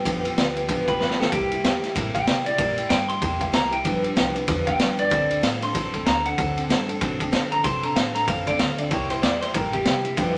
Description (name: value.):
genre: rockabilly.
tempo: 190 BPM.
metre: 4/4.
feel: swing 60% on 8ths.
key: unclear.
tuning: A4 = 440 Hz.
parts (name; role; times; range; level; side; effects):
electric guitar through a small old amp; melody; 0.0-10.3 s; G4 to C6; -28 LUFS; equal; none.
picked steel-string acoustic guitar; accompaniment; 0.0-10.4 s; G2 to A4; -30 LUFS; equal; none.
upright bass; bass; 0.0-10.4 s; G1 to D3; -34 LUFS; equal; none.
raw garage drum kit; drums; 0.1-10.3 s; kick drum, ride cymbal, snare drum; -26 LUFS; equal; none.
room: moderate studio reverb, RT60 0.6 s.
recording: none.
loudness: -23 LUFS.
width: mono.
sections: 0.0-10.4 A section.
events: clean electric guitar solo 0.0-10.4; drum fill 1.0-1.3.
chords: 0.0 G7; 1.3 C7; 3.9 G7; 5.1 D7; 8.9 C7.